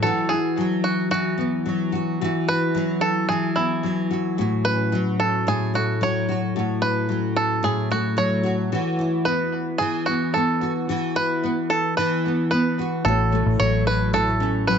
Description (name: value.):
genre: pop.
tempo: 110 BPM.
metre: 4/4.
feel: straight.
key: A major.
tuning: A4 = 441 Hz.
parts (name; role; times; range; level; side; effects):
bluegrass banjo; melody; 0.0-14.8 s; E4 to C#5; -24 LUFS; right 2 dB; plate reverb, tape echo.
nylon-string guitar; accompaniment; 0.0-14.8 s; A2 to F#4; -22 LUFS; left 1 dB; double-tracked left and right.
warm grand piano; accompaniment; 13.0-14.8 s; A3 to C#5; -32 LUFS; left 8 dB; plate reverb.
vintage muted fingered electric bass; bass; 13.1-14.8 s; A1; -23 LUFS; equal; none.
room: moderate small room reverb, RT60 0.5 s.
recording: nothing above 7.7 kHz.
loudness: -20 LUFS.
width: side -7 dB against mid.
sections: 0.0-13.1 A section; 13.1-14.8 B section.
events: none.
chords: 0.0 Esus2; 4.4 A6; 8.7 Esus2; 13.1 A6.